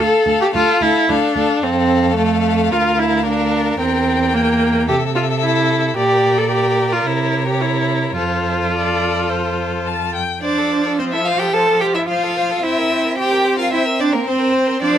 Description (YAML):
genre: quick classical-period movement for string quartet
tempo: 110 BPM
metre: 4/4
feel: straight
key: F major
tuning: A4 = 439 Hz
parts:
  - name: rich violin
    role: melody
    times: 0.0-15.0 s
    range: A4 to A5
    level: -23 LUFS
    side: left 6 dB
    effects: none
  - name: rich violin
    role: second line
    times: 0.0-15.0 s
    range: A4 to A5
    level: -22 LUFS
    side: left 3 dB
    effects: none
  - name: rich viola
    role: accompaniment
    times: 0.0-15.0 s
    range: F3 to A4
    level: -18 LUFS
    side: right 1 dB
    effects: none
  - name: rich cello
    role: bass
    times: 0.0-15.0 s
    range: D2 to A4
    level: -20 LUFS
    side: right 3 dB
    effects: none
room: light reverb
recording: none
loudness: -14 LUFS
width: side -10 dB against mid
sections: 0.0-10.4 A section; 10.4-15.0 B section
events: none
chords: 0.0 Dm; 1.6 F; 2.7 Bb/D; 3.8 Edim; 4.9 Am/C; 6.0 Bb6; 7.1 C7b9; 8.2 F; 12.6 C7